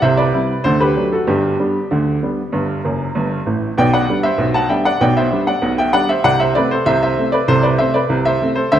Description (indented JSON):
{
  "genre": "ragtime piano",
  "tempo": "97 BPM",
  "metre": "2/4",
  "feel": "straight",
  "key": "G major",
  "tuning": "A4 = 440 Hz",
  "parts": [
    { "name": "clear upright piano", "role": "solo", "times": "0.0-8.8 s", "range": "F#1 to A5", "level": "-14 LUFS", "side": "equal", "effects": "none" }
  ],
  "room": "wet concert hall reverb, RT60 1.8 s",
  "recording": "recorded in a church or concert hall",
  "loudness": "-14 LUFS",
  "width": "side -10 dB against mid",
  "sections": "0.0-3.8 A section; 3.8-8.8 B section",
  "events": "upright piano fill 2.8-3.8",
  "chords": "0.0 C; 0.7 D; 1.3 G; 3.8 G/B; 6.2 Am/C"
}